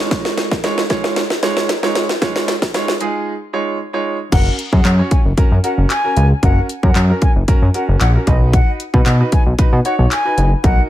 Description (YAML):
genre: dance-pop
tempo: 114 BPM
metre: 4/4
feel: straight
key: F# major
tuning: A4 = 441 Hz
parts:
  - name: warm baby grand piano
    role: accompaniment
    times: 0.0-10.9 s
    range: G#3 to C#5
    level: -22 LUFS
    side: right 3 dB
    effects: sidechain pumping
  - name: house drum kit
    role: drums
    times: 0.1-10.8 s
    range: crash cymbal, handclaps, hi-hat, kick drum, snare drum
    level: -15 LUFS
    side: equal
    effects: none
  - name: concert flute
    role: melody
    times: 4.3-10.8 s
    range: D#5 to G#5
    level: -22 LUFS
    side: left 2 dB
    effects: sidechain pumping, ping-pong delay
  - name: fat analog bass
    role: bass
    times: 4.3-10.8 s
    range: F#1 to B2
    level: -14 LUFS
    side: equal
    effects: sidechain pumping
room: little or no reverb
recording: high-pass filter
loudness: -13 LUFS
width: side -13 dB against mid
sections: 0.0-4.3 A section; 4.3-10.9 B section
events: build-up 0.0-4.3; drum fill 0.0-3.3; break 3.3-4.3; drop 4.3-10.9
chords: 0.0 C#add9; 4.3 F#; 8.3 B